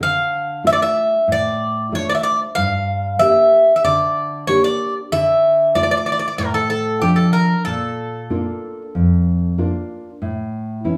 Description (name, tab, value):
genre	greek folk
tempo	94 BPM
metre	4/4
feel	straight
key	unclear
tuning	A4 = 440 Hz
part	Greek bouzouki	melody	0.0-9.5 s	G4 to F5	-18 LUFS	equal	none
part	nylon-string guitar	accompaniment	0.0-11.0 s	F2 to G4	-23 LUFS	equal	none
room	wet large studio reverb, RT60 0.8 s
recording	band playing live in one room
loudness	-18 LUFS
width	mono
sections	0.0-10.2 A section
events	none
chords	0.0 Dm; 2.6 Gm; 5.1 Dm; 7.7 Bb; 10.2 A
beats	| 0.01 0.65 1.28 1.92 | 2.56 3.20 3.84 4.47 | 5.11 5.75 6.39 7.03 | 7.66 8.30 8.94 9.58 | 10.21 10.85